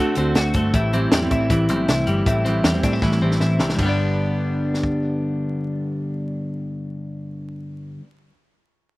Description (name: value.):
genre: jangly indie pop.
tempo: 157 BPM.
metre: 4/4.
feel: straight.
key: G major.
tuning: A4 = 440 Hz.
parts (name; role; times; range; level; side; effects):
fingerpicked steel-string acoustic guitar; accompaniment; 0.0-8.1 s; G2 to F#4; -27 LUFS; right 3 dB; slapback echo.
twelve-string electric guitar; arpeggios; 0.0-8.1 s; G2 to F#4; -22 LUFS; left 2 dB; none.
vintage muted picked electric bass; bass; 0.0-8.0 s; G1 to D3; -24 LUFS; equal; none.
compact cocktail drum kit; drums; 0.2-4.9 s; hi-hat, kick drum, ride cymbal, snare drum; -22 LUFS; equal; none.
room: little or no reverb.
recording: recorded outdoors, with no room sound, vinyl crackle.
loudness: -18 LUFS.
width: side -19 dB against mid.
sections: 0.0-3.8 A section; 3.8-6.8 B section.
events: drum fill 3.0-3.8.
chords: 0.0 D7; 0.7 Am7; 3.8 G.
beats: 0.35 | 0.73 1.11 1.50 1.88 | 2.26 2.64 3.02 3.40 | 3.78 4.16 4.55 4.93 | 5.31 5.69 6.07 6.46.